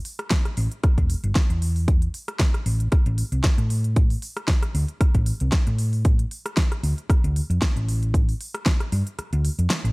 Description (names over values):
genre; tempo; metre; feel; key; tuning
nu-disco, nu disco; 115 BPM; 4/4; swing 54% on 16ths; unclear; A4 = 440 Hz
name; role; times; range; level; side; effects
pop drum kit; drums; 0.1-9.9 s; hi-hat, rim click, snare drum; -29 LUFS; equal; small room ambience
electronic kick drum; drums; 0.3-8.8 s; none; -20 LUFS; equal; small room ambience
hollow-body short-scale fingered electric bass; bass; 0.6-9.9 s; E1 to A2; -22 LUFS; equal; sidechain pumping
room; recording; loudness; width
little or no reverb; dry, gritty hardware recording; -20 LUFS; side -27 dB against mid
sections
0.0-9.9 A section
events
kick drops out 9.2-9.9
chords
none